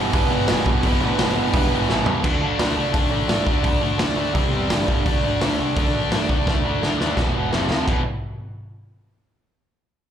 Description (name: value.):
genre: punk rock.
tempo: 170 BPM.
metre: 4/4.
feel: straight.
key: E minor.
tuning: A4 = 440 Hz.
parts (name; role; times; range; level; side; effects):
distorted electric guitar; riff; 0.0-8.0 s; E2 to D4; -24 LUFS; left 10 dB; distortion.
overdriven electric guitar; riff; 0.0-8.0 s; E2 to D4; -25 LUFS; right 9 dB; slapback echo.
overdriven electric guitar; riff; 0.0-2.2 s; G3 to B4; -26 LUFS; right 2 dB; slapback echo.
growling picked electric bass; bass; 0.0-8.0 s; E1 to G2; -27 LUFS; equal; overdrive.
raw garage drum kit; drums; 0.1-8.0 s; crash cymbal, hi-hat, kick drum, snare drum, toms; -22 LUFS; equal; none.
room: studio reverb.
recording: live gig heard through the venue's PA, club reverb.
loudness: -18 LUFS.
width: side -9 dB against mid.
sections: 0.0-2.2 A section; 2.2-7.9 B section; 7.9-9.3 C section.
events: drum fill 1.9-2.2, 6.5-7.9.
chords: 0.0 Em/G; 2.2 D5; 4.4 C5; 4.7 G5; 5.1 D5; 7.2 E5; 7.5 F5; 7.9 E5.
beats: 0.13 0.48 | 0.83 1.19 1.54 1.89 | 2.24 2.59 2.94 3.30 | 3.65 4.00 4.35 4.71 | 5.06 5.41 5.76 6.12 | 6.47 6.82 7.17 7.53 | 7.88.